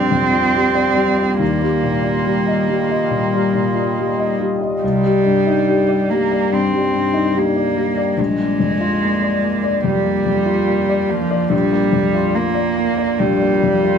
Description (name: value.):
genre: neoclassical piano and strings.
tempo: 71 BPM.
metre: 4/4.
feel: rubato.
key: unclear.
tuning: A4 = 440 Hz.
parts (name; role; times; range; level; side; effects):
warm cello; second line; 0.0-14.0 s; F3 to C4; -18 LUFS; right 3 dB; none.
warm grand piano; accompaniment; 0.0-14.0 s; Bb1 to Eb5; -18 LUFS; left 4 dB; none.
deep dark ambient pad; sustained chords; 0.0-14.0 s; G3 to Eb5; -25 LUFS; left 1 dB; chorus, built-in reverb.
room: light reverb.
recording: small room ambience.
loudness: -15 LUFS.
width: side -7 dB against mid.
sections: 0.0-14.0 A section.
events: none.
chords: 0.0 Gm7/Bb; 1.4 Ebadd9; 4.8 Cmadd9; 8.2 Bb7.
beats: 0.55 | 1.41 2.26 3.12 3.97 | 4.83 5.68 6.52 7.36 | 8.19 9.03 9.86 10.69 | 11.53 12.36 13.20.